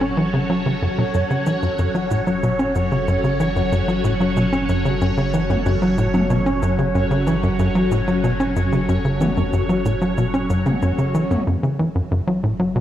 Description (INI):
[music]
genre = ambient, sequencer-driven space music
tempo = 93 BPM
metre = 4/4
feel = straight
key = F# minor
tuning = A4 = 439 Hz
[part]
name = phased string machine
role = sustained chords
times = 0.0-12.8 s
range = C#3 to F#5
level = -24 LUFS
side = equal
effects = ensemble chorus, phaser
[part]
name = tight sequencer bass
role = riff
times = 0.0-12.8 s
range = F#2 to C#4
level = -19 LUFS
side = equal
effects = ping-pong delay
[part]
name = warm sub bass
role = bass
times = 0.0-12.8 s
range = F#1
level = -30 LUFS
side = equal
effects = none
[part]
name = bubbling stepped-filter texture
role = texture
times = 0.0-12.8 s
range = C#5 to E5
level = -28 LUFS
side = right 1 dB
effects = chorus, built-in reverb
[part]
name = electronic cabasa and toms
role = percussion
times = 1.1-11.4 s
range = none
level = -28 LUFS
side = left 1 dB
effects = ping-pong delay
[sound]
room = wet plate reverb, RT60 2.5 s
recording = worn, warbling old tape, cassette tape, warbly pitch drift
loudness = -17 LUFS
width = side -11 dB against mid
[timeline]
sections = 0.0-11.5 A section; 11.5-12.8 A section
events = fade-in on string machine 0.0-11.5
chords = 0.0 F#m